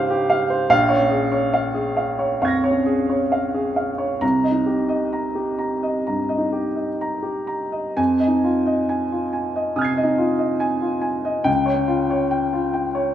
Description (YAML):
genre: classical, impressionist solo piano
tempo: 61-75 BPM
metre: 4/4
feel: rubato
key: F minor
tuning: A4 = 440 Hz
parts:
  - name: warm baby grand piano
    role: solo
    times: 0.0-13.1 s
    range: Bb1 to C7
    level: -18 LUFS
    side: equal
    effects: none
room: wet recital hall reverb, RT60 1.7 s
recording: recorded in a church or concert hall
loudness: -18 LUFS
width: side -10 dB against mid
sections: 0.0-13.1 A section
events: none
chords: 0.0 Dbmaj7#11; 0.7 Bbm7; 4.2 Cm7; 8.0 Fm7; 11.5 Db(#11)